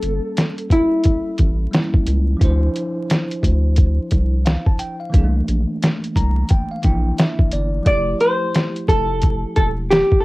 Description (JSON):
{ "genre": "hip hop, jazz-hop", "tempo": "88 BPM", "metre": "4/4", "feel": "swing 61% on 16ths", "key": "F major", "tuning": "A4 = 438 Hz", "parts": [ { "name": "vintage hollow-body jazz guitar", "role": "melody", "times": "0.0-2.0, 7.9-10.2 s", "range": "E4 to D5", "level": "-18 LUFS", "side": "equal", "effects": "cassette tape" }, { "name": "bell-like tine electric piano", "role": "accompaniment", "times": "0.0-10.2 s", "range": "E3 to Bb5", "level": "-25 LUFS", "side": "equal", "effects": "medium stereo tremolo, cassette tape" }, { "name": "round analog bass", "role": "bass", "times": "0.0-10.0 s", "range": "E1 to D2", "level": "-19 LUFS", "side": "equal", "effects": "transformer saturation" }, { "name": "lo-fi sampler-style drum kit", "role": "drums", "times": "0.0-10.2 s", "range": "hi-hat, kick drum, snare drum", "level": "-16 LUFS", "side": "equal", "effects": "overdrive, cassette tape" } ], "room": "little or no reverb", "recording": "home recording on cassette, vinyl crackle", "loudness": "-16 LUFS", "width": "side -20 dB against mid", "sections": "0.0-10.2 A section", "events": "tine electric piano fill 5.8-7.9", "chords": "0.0 A7b9; 2.4 Dm9; 5.1 C13; 7.9 Fmaj9" }